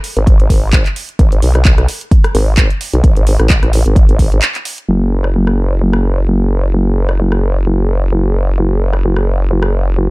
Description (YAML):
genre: bass house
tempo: 130 BPM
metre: 4/4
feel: swing 55% on 16ths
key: F# minor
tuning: A4 = 440 Hz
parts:
  - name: house drum kit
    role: drums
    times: 0.0-9.7 s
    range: handclaps, hi-hat, rim click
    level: -20 LUFS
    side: right 1 dB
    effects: studio reverb
  - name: vowel-sweep wobble bass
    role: bass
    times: 0.2-10.1 s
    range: F#1 to B1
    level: -12 LUFS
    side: equal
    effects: chorus, tube saturation, sidechain pumping
  - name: electronic kick drum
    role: drums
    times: 0.3-4.3 s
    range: none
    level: -10 LUFS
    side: equal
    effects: studio reverb
room: digital ambience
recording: dark, warm production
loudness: -10 LUFS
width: side -23 dB against mid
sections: 0.0-4.9 A section; 4.9-10.1 B section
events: break 4.4-4.9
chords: none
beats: 0.27 0.73 | 1.19 1.66 2.12 2.58 | 3.04 3.50 3.96 4.42 | 4.88 5.35 5.81 6.27 | 6.73 7.19 7.66 8.12 | 8.58 9.04 9.50 9.96